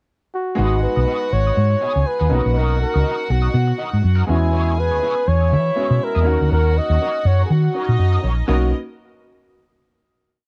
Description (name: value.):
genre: disco.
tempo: 122 BPM.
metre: 4/4.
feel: swing 56% on 16ths.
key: B major.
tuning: A4 = 440 Hz.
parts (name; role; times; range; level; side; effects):
breathy flugelhorn; melody; 0.3-8.7 s; E4 to D#5; -24 LUFS; equal; none.
warm studio violin section; second line; 0.6-8.7 s; B3 to G#5; -32 LUFS; equal; none.
clean electric guitar; accompaniment; 0.6-8.6 s; B3 to F#5; -32 LUFS; equal; wah, warbly pitch drift.
clear grand piano; accompaniment; 0.6-8.7 s; G#3 to F#4; -30 LUFS; equal; none.
hollow-body short-scale fingered electric bass; bass; 0.6-8.7 s; G#1 to E3; -19 LUFS; equal; none.
room: small room ambience.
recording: dry, close 1970s-style studio recording.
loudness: -18 LUFS.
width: mono.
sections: 0.0-0.6 pickup bar; 0.6-8.5 pre-chorus; 8.5-10.5 final chord.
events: none.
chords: 0.0 N.C.; 0.6 G#m7; 2.3 Bmaj7; 4.3 E6; 6.3 D#m7; 8.5 Bmaj7.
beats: 0.08 | 0.58 1.07 1.56 2.06 | 2.55 3.05 3.54 4.04 | 4.53 5.03 5.52 6.01 | 6.51 7.00 7.50 7.99 | 8.48.